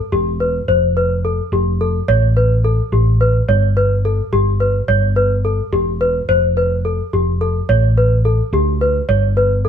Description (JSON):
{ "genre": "progressive instrumental, band music in an uneven meter", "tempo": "214 BPM (eighths)", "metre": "5/8", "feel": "straight", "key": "A mixolydian", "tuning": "A4 = 441 Hz", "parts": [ { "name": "small celesta", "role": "arpeggios", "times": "0.1-9.7 s", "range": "G4 to C#5", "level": "-17 LUFS", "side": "left 1 dB", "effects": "none" }, { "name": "hollow-body short-scale fingered electric bass", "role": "bass", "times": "0.1-9.7 s", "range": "E1 to D2", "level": "-16 LUFS", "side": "equal", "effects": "none" } ], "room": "moderate stone room reverb, RT60 1.0 s", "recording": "band playing live in one room", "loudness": "-13 LUFS", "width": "side -8 dB against mid", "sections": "0.0-9.7 A section", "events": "none", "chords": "0.0 Em; 0.7 F; 2.1 A9; 3.5 G; 4.9 Em/G; 6.3 F; 7.7 A7sus4; 9.1 G" }